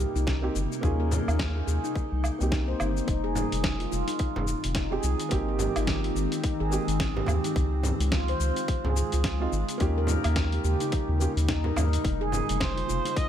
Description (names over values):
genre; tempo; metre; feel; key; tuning
organic downtempo; 107 BPM; 4/4; swing 59% on 16ths; F minor; A4 = 440 Hz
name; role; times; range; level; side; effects
granular cloud pad; sustained chords; 0.0-13.3 s; C3 to G5; -35 LUFS; left 1 dB; built-in reverb, sidechain pumping
handpan; arpeggios; 0.0-13.2 s; Eb4 to C5; -32 LUFS; equal; digital delay
round analog bass; bass; 0.0-13.0 s; F1 to Eb2; -27 LUFS; equal; sidechain pumping
dusty soul sampler-style drum kit; drums; 0.2-13.3 s; hi-hat, shaker, snare drum, woodblock; -34 LUFS; equal; small room ambience
electronic kick drum; drums; 0.3-13.3 s; none; -29 LUFS; equal; overdrive, small room ambience
felt-muted upright piano; accompaniment; 0.4-11.3 s; Ab3 to Ab4; -34 LUFS; right 4 dB; sidechain pumping, digital delay
frame drum; percussion; 1.1-12.5 s; none; -35 LUFS; right 2 dB; none
warm kamancheh; melody; 12.6-13.3 s; C5 to Eb5; -31 LUFS; right 2 dB; none
room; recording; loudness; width
light reverb, studio ambience; none; -24 LUFS; side -10 dB against mid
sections
0.0-3.1 A section; 3.1-13.3 B section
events
none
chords
0.0 Cm7; 0.8 Eb7sus4; 2.0 Cm7; 3.1 Fm7; 5.3 Abmaj7; 7.6 Dbmaj7; 9.8 Eb7; 12.0 Fm7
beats
0.27 | 0.83 1.39 1.95 2.51 | 3.07 3.63 4.20 4.76 | 5.32 5.88 6.44 7.00 | 7.56 8.12 8.68 9.24 | 9.80 10.36 10.92 11.48 | 12.05 12.61 13.17